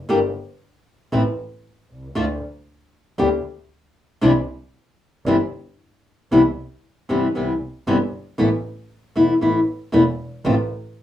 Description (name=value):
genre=tango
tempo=116 BPM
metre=4/4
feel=rubato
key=C major from 6.3 s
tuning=A4 = 438 Hz
part: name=rich double bass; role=bass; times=0.0-10.7 s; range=E1 to D2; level=-25 LUFS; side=right 1 dB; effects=none
part: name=flamenco guitar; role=accompaniment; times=0.1-10.5 s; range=C3 to G4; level=-17 LUFS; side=left 1 dB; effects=none
room=moderate studio reverb, RT60 0.5 s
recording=rough home demo mix, small room ambience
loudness=-18 LUFS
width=side -12 dB against mid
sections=0.0-6.3 A section; 6.3-11.0 B section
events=none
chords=0.1 G5; 1.1 Am; 2.2 N.C.; 4.2 Cadd9; 6.3 Cmaj7; 8.4 Asus2; 10.4 Dm7/A